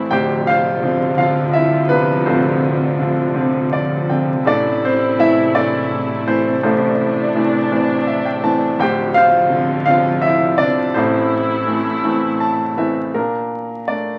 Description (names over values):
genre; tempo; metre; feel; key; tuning
acoustic folk-pop ballad; 55 BPM (dotted quarters); 6/8; straight; A minor; A4 = 440 Hz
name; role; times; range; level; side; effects
clear concert grand piano; melody; 0.0-14.2 s; D1 to A5; -18 LUFS; equal; none
warm chamber string section; sustained chords; 0.0-13.1 s; D2 to E4; -24 LUFS; equal; none
room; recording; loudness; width
wet studio ambience, RT60 0.5 s; very old 78 rpm record, vinyl crackle; -17 LUFS; mono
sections
0.0-13.1 A section; 13.1-14.2 B section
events
grand piano fill 3.3-4.4, 7.7-8.8, 12.0-13.1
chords
0.1 Dm7; 4.4 Am; 8.8 Dm7; 10.9 Am; 13.1 Bbmaj7